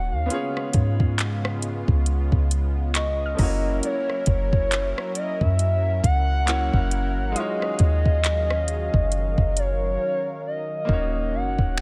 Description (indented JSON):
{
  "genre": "contemporary R&B",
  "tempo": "68 BPM",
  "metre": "4/4",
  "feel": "swing 58% on 16ths",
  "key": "Eb minor",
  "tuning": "A4 = 439 Hz",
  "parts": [
    { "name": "gliding portamento lead", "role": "melody", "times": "0.0-11.8 s", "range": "Db5 to Gb5", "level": "-29 LUFS", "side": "equal", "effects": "chorus, tape echo" },
    { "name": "bright grand piano", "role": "accompaniment", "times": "0.0-11.8 s", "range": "Ab3 to Db5", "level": "-35 LUFS", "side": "equal", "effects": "none" },
    { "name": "lush unison pad", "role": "sustained chords", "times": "0.0-11.8 s", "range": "Db3 to F5", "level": "-36 LUFS", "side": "equal", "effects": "chorus, sidechain pumping" },
    { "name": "soft 808-style bass", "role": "bass", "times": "0.0-11.8 s", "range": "Eb1 to Ab2", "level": "-26 LUFS", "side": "equal", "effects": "none" },
    { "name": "soft round pluck", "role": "texture", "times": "0.0-8.3 s", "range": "Ab5 to F6", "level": "-41 LUFS", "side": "equal", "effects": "chorus, tape echo" },
    { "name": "smooth R&B drum kit", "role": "drums", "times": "0.3-11.8 s", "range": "finger snaps, handclaps, hi-hat, kick drum, rim click", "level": "-26 LUFS", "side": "equal", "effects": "vintage 12-bit sampler grit" }
  ],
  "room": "little or no reverb",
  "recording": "none",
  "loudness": "-23 LUFS",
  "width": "mono",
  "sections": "0.0-10.9 A section",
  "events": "break 10.0-10.9; hi-hats muted 10.9-11.8",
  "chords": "0.3 Db7; 3.4 Gb7; 7.4 Ebm11; 10.9 Ebm7",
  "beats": "| 0.30 1.18 2.06 2.95 | 3.83 4.71 5.59 6.48 | 7.36 8.24 9.12 10.01 | 10.89 11.77"
}